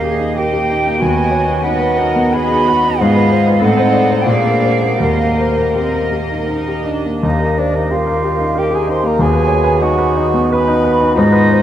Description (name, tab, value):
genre	classical, romantic movement for piano and orchestra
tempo	77-100 BPM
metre	3/4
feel	rubato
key	unclear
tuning	A4 = 436 Hz
part	rich studio violin section	melody	0.0-7.0 s	D5 to Eb5	-28 LUFS	right 3 dB	none
part	warm grand piano	melody	0.0-11.6 s	Eb2 to D5	-15 LUFS	left 1 dB	none
part	concert flute	second line	0.0-11.6 s	D5 to C6	-19 LUFS	right 2 dB	none
part	rich studio viola section	accompaniment	0.0-7.2 s	Bb3 to A4	-22 LUFS	right 3 dB	none
part	dark studio cello section	bass	0.0-6.8 s	D4 to B4	-22 LUFS	left 1 dB	none
part	mellow cor anglais	second line	7.2-11.6 s	D4 to C5	-19 LUFS	right 4 dB	none
part	warm bassoon	accompaniment	7.2-11.6 s	Bb3 to B3	-23 LUFS	left 1 dB	none
part	warm clarinet	second line	7.3-11.6 s	F4 to G4	-23 LUFS	left 2 dB	none
room	wet cathedral reverb, RT60 6.3 s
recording	in a vast, echoing space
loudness	-12 LUFS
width	side -11 dB against mid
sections	0.0-7.2 A section; 7.2-11.6 A section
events	none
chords	0.0 Eb; 1.0 B/D#; 3.0 Fm7b5/Ab; 3.6 Adim7; 4.3 Bb7; 5.0 Eb; 9.2 B/D#